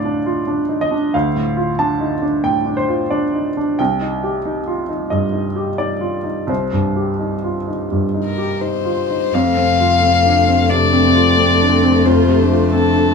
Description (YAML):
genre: neoclassical piano and strings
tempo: 79-94 BPM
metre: 4/4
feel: rubato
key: unclear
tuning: A4 = 440 Hz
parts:
  - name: clear baby grand piano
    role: accompaniment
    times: 0.0-13.1 s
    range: C2 to A5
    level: -17 LUFS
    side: right 1 dB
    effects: none
  - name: warm violin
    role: melody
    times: 8.3-13.1 s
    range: A4 to F5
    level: -16 LUFS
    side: left 6 dB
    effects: none
  - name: dark viola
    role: accompaniment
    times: 9.3-13.1 s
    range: A3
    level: -20 LUFS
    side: left 2 dB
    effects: none
  - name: dark double bass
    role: bass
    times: 9.3-13.1 s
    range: F1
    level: -19 LUFS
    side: left 3 dB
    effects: none
  - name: dark cello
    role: second line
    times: 10.7-13.1 s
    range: C4 to F4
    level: -20 LUFS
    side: right 1 dB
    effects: none
room: little or no reverb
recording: small room ambience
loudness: -14 LUFS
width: side -5 dB against mid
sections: 0.0-9.3 A section; 9.3-13.1 A section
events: none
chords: 0.0 Dm; 3.8 Cm; 9.3 F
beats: 0.48 | 1.14 1.78 2.43 3.10 | 3.79 4.45 5.11 5.79 | 6.49 7.19 7.90 8.61 | 9.34 10.03 10.71 11.38 | 12.05 12.72